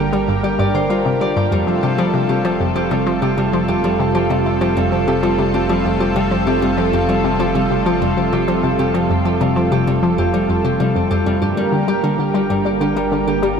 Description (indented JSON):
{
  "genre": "ambient, sequencer-driven space music",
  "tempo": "97 BPM",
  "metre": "4/4",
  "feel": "straight",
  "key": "unclear",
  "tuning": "A4 = 441 Hz",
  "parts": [
    { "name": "lush unison pad", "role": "sustained chords", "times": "0.0-13.6 s", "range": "C3 to Bb4", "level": "-19 LUFS", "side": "right 1 dB", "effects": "chorus" },
    { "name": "Celtic harp", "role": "arpeggios", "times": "0.0-13.6 s", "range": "G3 to G5", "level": "-21 LUFS", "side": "moving between left 2 dB and right 6 dB", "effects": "auto-pan, ping-pong delay" },
    { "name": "hollow square pluck", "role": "riff", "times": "0.0-13.6 s", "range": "F2 to G3", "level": "-19 LUFS", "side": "left 2 dB", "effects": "chorus, phaser, ping-pong delay" },
    { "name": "fat analog bass", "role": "bass", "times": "0.0-13.6 s", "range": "F1 to G1", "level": "-28 LUFS", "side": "equal", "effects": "tube saturation" }
  ],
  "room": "wet huge ambient reverb, RT60 7.4 s",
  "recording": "none",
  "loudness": "-15 LUFS",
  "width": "side -6 dB against mid",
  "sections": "0.0-13.6 A section",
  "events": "none",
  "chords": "0.0 Gm; 1.5 F; 11.4 Gm",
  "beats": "0.28 0.90 | 1.52 2.14 2.76 3.38 | 3.99 4.61 5.23 5.85 | 6.47 7.09 7.71 8.32 | 8.94 9.56 10.18 10.80 | 11.42 12.04 12.65 13.27"
}